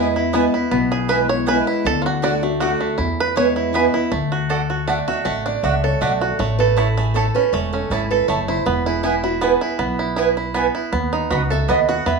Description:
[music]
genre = bluegrass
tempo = 158 BPM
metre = 3/4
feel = swing 53% on 8ths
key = E mixolydian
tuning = A4 = 440 Hz
[part]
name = bluegrass banjo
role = melody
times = 0.0-12.2 s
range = A3 to D5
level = -22 LUFS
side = right 4 dB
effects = plate reverb
[part]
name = picked acoustic archtop guitar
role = accompaniment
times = 0.0-12.2 s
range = E2 to F#5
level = -21 LUFS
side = equal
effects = none
[part]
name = mandolin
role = stabs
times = 0.0-11.8 s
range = A3 to B5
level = -21 LUFS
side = right 6 dB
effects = none
[part]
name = upright bass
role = bass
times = 0.0-12.2 s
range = E1 to E2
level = -24 LUFS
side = equal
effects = none
[sound]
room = moderate studio reverb, RT60 0.5 s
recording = small room reverb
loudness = -17 LUFS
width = side -4 dB against mid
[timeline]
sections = 0.0-4.1 A section; 4.1-12.2 A section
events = five-string banjo solo 0.0-4.1; steel-string acoustic guitar solo 4.1-12.2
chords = 0.0 E; 1.9 D; 3.0 E; 4.1 D; 6.4 A; 8.7 E; 10.9 B

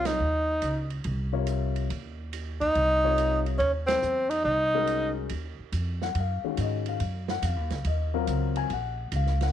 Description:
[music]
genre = modal jazz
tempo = 141 BPM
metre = 4/4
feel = swing 67% on 8ths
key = Eb dorian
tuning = A4 = 439 Hz
[part]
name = breathy tenor saxophone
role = melody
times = 0.0-5.1 s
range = C4 to Eb4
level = -24 LUFS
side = equal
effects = none
[part]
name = dark upright piano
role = accompaniment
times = 0.0-9.5 s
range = C3 to Ab5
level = -31 LUFS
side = left 15 dB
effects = none
[part]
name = upright bass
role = bass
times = 0.0-9.5 s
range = Bb1 to Ab2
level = -29 LUFS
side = right 1 dB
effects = tube saturation
[part]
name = open jazz drum kit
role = drums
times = 0.1-9.5 s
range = hi-hat, kick drum, ride cymbal, snare drum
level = -39 LUFS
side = right 10 dB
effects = none
[sound]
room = light reverb, small room ambience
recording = 1960s-style stereo with parts hard left and right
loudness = -25 LUFS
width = side -10 dB against mid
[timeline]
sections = 0.0-5.3 A section; 5.3-9.5 B section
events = band accent 0.0, 3.8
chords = 0.0 Abadd9 (rootless); 5.3 Ebm9

